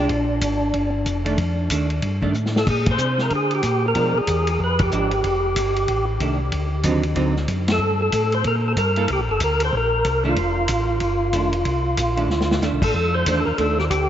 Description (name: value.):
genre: soul jazz organ trio.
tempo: 187 BPM.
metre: 4/4.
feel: swing 62% on 8ths.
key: F mixolydian.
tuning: A4 = 436 Hz.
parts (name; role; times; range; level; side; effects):
percussive tonewheel organ; melody; 0.0-14.1 s; D4 to C5; -22 LUFS; equal; slow rotary speaker, overdrive, chorus vibrato, analog delay.
hollow-body jazz guitar; accompaniment; 0.0-13.8 s; D3 to A4; -28 LUFS; right 3 dB; ensemble chorus.
mellow tonewheel organ; bass; 0.0-14.1 s; F1 to D3; -23 LUFS; equal; slow rotary speaker.
warm soul drum kit; drums; 0.1-14.0 s; crash cymbal, hi-hat, kick drum, ride cymbal, snare drum; -27 LUFS; equal; none.
room: wet cathedral reverb, RT60 6.1 s.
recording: dreamy mix soaked in reverb, nothing above 7.8 kHz.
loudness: -18 LUFS.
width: side -10 dB against mid.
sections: 0.0-12.9 A section; 12.9-14.1 A section.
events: drum fill 2.3-2.7, 12.3-12.6; band accent 2.8, 4.8, 7.6.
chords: 0.1 Bb6; 1.4 F13; 2.7 Bb69; 4.0 Bdim7; 5.2 F13; 6.5 D7b9; 7.8 Gm; 9.1 Csus2; 10.4 F13.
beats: | 0.10 0.42 0.74 1.06 | 1.38 1.71 2.03 2.35 | 2.67 2.99 3.31 3.63 | 3.96 4.28 4.60 4.92 | 5.24 5.56 5.88 6.20 | 6.52 6.84 7.16 7.49 | 7.80 8.13 8.45 8.77 | 9.09 9.41 9.73 10.05 | 10.37 10.69 11.01 11.34 | 11.66 11.98 12.30 12.62 | 12.94 13.26 13.58 13.90.